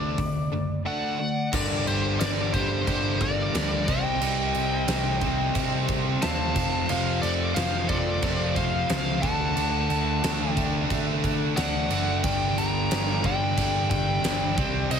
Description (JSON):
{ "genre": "hard rock", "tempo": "90 BPM", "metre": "4/4", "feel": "straight", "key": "unclear", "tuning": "A4 = 442 Hz", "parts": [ { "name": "biting lead guitar", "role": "melody", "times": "0.0-15.0 s", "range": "C5 to Bb5", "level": "-29 LUFS", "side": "left 2 dB", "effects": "overdrive" }, { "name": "cranked stack guitar", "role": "riff", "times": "0.0-15.0 s", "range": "F2 to D4", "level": "-32 LUFS", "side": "right 14 dB", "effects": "overdrive, spring reverb" }, { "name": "crunchy overdriven guitar", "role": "riff", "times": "0.0-15.0 s", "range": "F2 to D4", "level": "-31 LUFS", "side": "left 11 dB", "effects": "none" }, { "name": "picked electric bass", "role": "bass", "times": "0.0-15.0 s", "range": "F1 to D3", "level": "-29 LUFS", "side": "right 1 dB", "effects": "none" }, { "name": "huge arena drum kit", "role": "drums", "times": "0.2-15.0 s", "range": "crash cymbal, hi-hat, kick drum, snare drum", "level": "-29 LUFS", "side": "right 1 dB", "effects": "none" }, { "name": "smooth overdriven lead guitar", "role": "second line", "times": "0.9-15.0 s", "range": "G4 to G5", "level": "-36 LUFS", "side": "right 3 dB", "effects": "none" }, { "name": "biting overdriven guitar", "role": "riff", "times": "1.5-15.0 s", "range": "F2 to D4", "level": "-34 LUFS", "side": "equal", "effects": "spring reverb" } ], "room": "studio ambience", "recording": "heavily compressed radio sound", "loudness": "-23 LUFS", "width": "side -7 dB against mid", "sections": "0.0-1.5 A section; 1.5-15.0 B section", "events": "none", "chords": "0.0 D; 1.5 Gm; 3.9 Cm; 6.6 F; 9.2 D; 12.2 Gm" }